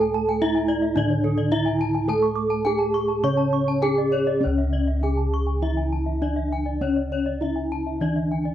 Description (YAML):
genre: Balinese gamelan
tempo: 100-112 BPM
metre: 4/4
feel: straight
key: C# pelog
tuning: A4 = 440 Hz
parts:
  - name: gamelan-type bronze metallophone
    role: melody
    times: 0.0-8.5 s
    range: C#4 to C#5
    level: -24 LUFS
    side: right 1 dB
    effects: none
  - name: gamelan-type bronze metallophone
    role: accompaniment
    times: 0.0-8.5 s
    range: C#3 to C#4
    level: -30 LUFS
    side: equal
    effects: none
  - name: gamelan-type bronze metallophone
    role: arpeggios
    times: 0.0-8.5 s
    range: A4-20c to D6+20c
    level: -33 LUFS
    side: right 7 dB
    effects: none
  - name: gamelan-type bossed gongs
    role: bass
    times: 0.0-8.5 s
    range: C#2 to A4-20c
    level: -25 LUFS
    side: equal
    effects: none
  - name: gamelan-type bronze metallophone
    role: arpeggios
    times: 0.3-8.5 s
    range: C#5 to C#6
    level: -31 LUFS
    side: left 5 dB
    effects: none
room: small room ambience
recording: dry, close 1970s-style studio recording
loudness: -20 LUFS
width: side -11 dB against mid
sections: 0.0-4.4 A section; 4.4-8.5 B section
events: none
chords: none